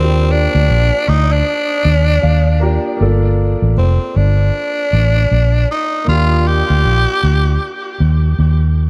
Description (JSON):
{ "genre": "lovers rock reggae", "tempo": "78 BPM", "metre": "4/4", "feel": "swing 60% on 16ths", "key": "G minor", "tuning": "A4 = 440 Hz", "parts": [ { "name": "raspy tenor saxophone", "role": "melody", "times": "0.0-8.0 s", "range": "C4 to G4", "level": "-20 LUFS", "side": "equal", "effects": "tape echo" }, { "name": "warm concert grand piano", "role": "accompaniment", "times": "0.0-8.9 s", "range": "Bb3 to Bb5", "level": "-26 LUFS", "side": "equal", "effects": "none" }, { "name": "vintage muted fingered electric bass", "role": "bass", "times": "0.0-8.9 s", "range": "F1 to Eb2", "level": "-14 LUFS", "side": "equal", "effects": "none" } ], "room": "light reverb, small room reverb", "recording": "dark, warm production", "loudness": "-14 LUFS", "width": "mono", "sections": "0.0-3.0 A section; 3.0-8.9 B section", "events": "tenor saxophone solo 0.0-3.0; grand piano fill 1.8-3.0", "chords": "0.0 Ebmaj9; 3.0 Gm9; 6.1 Ebmaj9" }